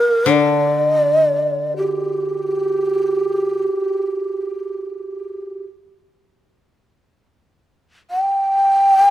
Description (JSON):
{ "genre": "japanese traditional, Japanese chamber music", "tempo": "free time", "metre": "none", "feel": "none", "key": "G minor", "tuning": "A4 = 441 Hz", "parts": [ { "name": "breathy mellow long shakuhachi", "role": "melody", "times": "0.0-9.1 s", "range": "G4 to G5", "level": "-16 LUFS", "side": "right 1 dB", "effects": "none" }, { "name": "koto", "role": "accompaniment", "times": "0.3-3.6 s", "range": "D3", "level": "-21 LUFS", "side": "left 8 dB", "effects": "none" } ], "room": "light reverb", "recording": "close, detailed microphones", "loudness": "-16 LUFS", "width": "side -13 dB against mid", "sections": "0.0-7.0 A section; 7.0-9.1 A section", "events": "none", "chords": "none", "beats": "free time" }